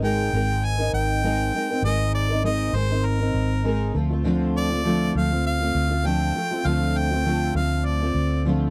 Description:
acoustic pop; 100 BPM; 4/4; swing 55% on 16ths; A4 = 439 Hz
bright harmonica; melody; 0.0-8.4 s; Bb4 to Ab5; -29 LUFS; equal
fingerpicked steel-string acoustic guitar; accompaniment; 0.0-8.7 s; D3 to Bb4; -27 LUFS; equal; double-tracked
vintage muted fingered electric bass; bass; 0.0-8.7 s; Ab1 to D2; -26 LUFS; equal
little or no reverb; dry, close 1970s-style studio recording; -23 LUFS; mono
0.0-8.7 A section
0.0 Abadd9; 3.9 Dm7

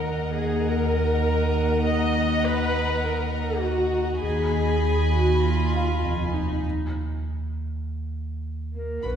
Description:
cinematic; 100 BPM; 4/4; straight; Eb minor; A4 = 440 Hz
warm chamber violin section; melody; 0.0-9.1 s; Bb5 to Cb6; -37 LUFS; left 4 dB
warm studio violin section; second line; 0.0-9.2 s; Eb5 to Ab5; -33 LUFS; left 1 dB
warm chamber viola section; accompaniment; 0.0-9.1 s; D4 to Eb5; -26 LUFS; equal
dark chamber double bass section; bass; 0.0-9.1 s; F1 to Eb2; -29 LUFS; right 2 dB
warm chamber cello section; bass; 0.0-9.2 s; Eb2 to B3; -30 LUFS; left 2 dB
sub bass with octave; drone; 0.0-9.2 s; B1 to Eb2; -28 LUFS; right 1 dB
felt-muted upright piano; texture; 0.0-6.7 s; F4 to Bb5; -39 LUFS; left 1 dB
mellow clarinet; second line; 8.7-9.2 s; Bb4 to B4; -30 LUFS; right 1 dB
wet scoring stage reverb, RT60 2.1 s; heard from further back in the room; -22 LUFS; side -8 dB against mid
0.0-9.0 A section
break 6.6-9.0
0.0 Ebm; 4.2 Abm/Eb; 6.6 Eb5

